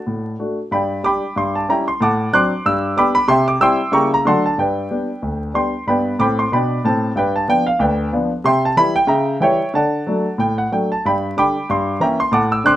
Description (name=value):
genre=jazz, stride piano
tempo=186 BPM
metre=4/4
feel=swing 59% on 8ths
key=G major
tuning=A4 = 441 Hz
part: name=warm concert grand piano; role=solo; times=0.0-12.8 s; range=D2 to F#6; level=-15 LUFS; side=equal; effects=none
room=wet small room ambience, RT60 0.5 s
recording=rough home demo mix, vinyl crackle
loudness=-15 LUFS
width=side -13 dB against mid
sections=0.0-5.9 A section; 5.9-12.8 A section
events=none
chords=0.0 D; 0.7 G; 1.4 C13b9/G; 2.0 D7/A; 2.6 G; 3.3 C; 3.9 C#dim7; 4.3 D7; 4.6 G; 7.2 G7; 8.4 C; 9.1 C#dim7; 9.7 D; 11.0 G; 11.7 Gdim7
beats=0.07 0.40 | 0.72 1.04 1.36 1.68 | 2.00 2.33 2.65 2.97 | 3.29 3.61 3.94 4.26 | 4.58 4.90 5.22 5.55 | 5.87 6.19 6.51 6.84 | 7.16 7.48 7.80 8.13 | 8.45 8.77 9.09 9.42 | 9.74 10.06 10.38 10.71 | 11.03 11.35 11.68 12.00 | 12.32 12.64